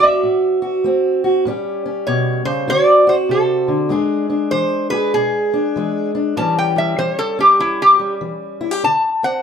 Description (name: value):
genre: acoustic country blues, solo or duo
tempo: 98 BPM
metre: 4/4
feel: swing 63% on 8ths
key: A mixolydian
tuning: A4 = 444 Hz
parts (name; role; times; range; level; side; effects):
- lap resonator guitar; melody; 0.0-9.4 s; E4 to A5; -15 LUFS; equal; plate reverb
- fingerpicked steel-string acoustic guitar; accompaniment; 0.0-9.4 s; E2 to G#4; -18 LUFS; equal; none
room: moderate studio reverb, RT60 0.6 s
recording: heard from further back in the room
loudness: -14 LUFS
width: side -7 dB against mid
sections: 0.0-6.4 A section; 6.4-9.4 B section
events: resonator guitar played with a steel bar solo 6.4-9.4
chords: 0.0 D7 (rootless); 1.5 A7; 2.7 D7; 3.9 E7; 6.4 A7; 8.8 D7